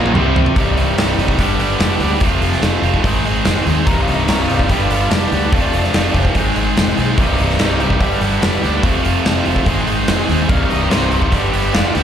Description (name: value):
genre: classic rock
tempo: 145 BPM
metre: 4/4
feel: straight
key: C harmonic minor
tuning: A4 = 440 Hz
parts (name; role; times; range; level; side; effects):
- bright tonewheel organ; sustained chords; 0.0-0.6, 7.2-12.0 s; G3 to Eb5; -31 LUFS; left 2 dB; none
- distorted electric guitar; riff; 0.0-12.0 s; C2 to C4; -20 LUFS; left 10 dB; distortion, slapback echo
- distorted electric guitar; riff; 0.0-12.0 s; C2 to Ab4; -18 LUFS; right 8 dB; overdrive, slapback echo
- picked electric bass; bass; 0.0-12.0 s; C1 to Eb2; -19 LUFS; equal; none
- big rock drum kit; drums; 0.1-12.0 s; hi-hat, kick drum, snare drum, toms; -18 LUFS; equal; none
- octave-fuzz lead guitar; second line; 3.9-6.3, 10.5-12.0 s; D4 to F5; -24 LUFS; left 3 dB; distortion, slapback echo
room: light reverb, small room ambience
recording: live gig heard through the venue's PA, club reverb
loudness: -13 LUFS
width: side -9 dB against mid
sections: 0.6-12.0 A section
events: drum fill 0.0-0.6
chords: 0.1 C5; 0.6 Cm; 1.4 G; 2.2 F; 3.0 Ab; 3.9 Cm; 4.7 G; 5.5 F; 6.4 Ab; 7.2 Cm; 8.0 G; 8.8 F; 9.7 Ab; 10.5 Cm; 11.3 G